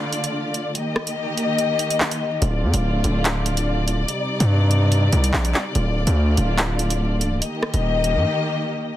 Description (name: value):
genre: hip hop, drill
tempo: 144 BPM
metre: 4/4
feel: half-time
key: D phrygian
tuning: A4 = 442 Hz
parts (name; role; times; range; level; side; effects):
- dark symphonic string section; sustained chords; 0.0-9.0 s; C3 to Eb5; -23 LUFS; left 2 dB; none
- drill drum kit; drums; 0.1-8.1 s; handclaps, hi-hat, rim click; -24 LUFS; right 1 dB; none
- distorted 808-style bass; bass; 2.4-8.3 s; C1 to G2; -19 LUFS; equal; distortion
room: little or no reverb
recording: dense, heavily limited modern master, vinyl crackle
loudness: -18 LUFS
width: side -13 dB against mid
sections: 0.0-9.0 A section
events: break 0.0-2.4, 8.3-9.0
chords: 0.0 Dm; 0.8 Eb; 2.4 Dm; 4.1 Cmadd9; 5.8 Dm; 7.4 Eb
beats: 0.34 | 0.75 1.17 1.58 2.00 | 2.42 2.83 3.25 3.67 | 4.08 4.50 4.92 5.33 | 5.75 6.17 6.58 7.00 | 7.42 7.83 8.25 8.67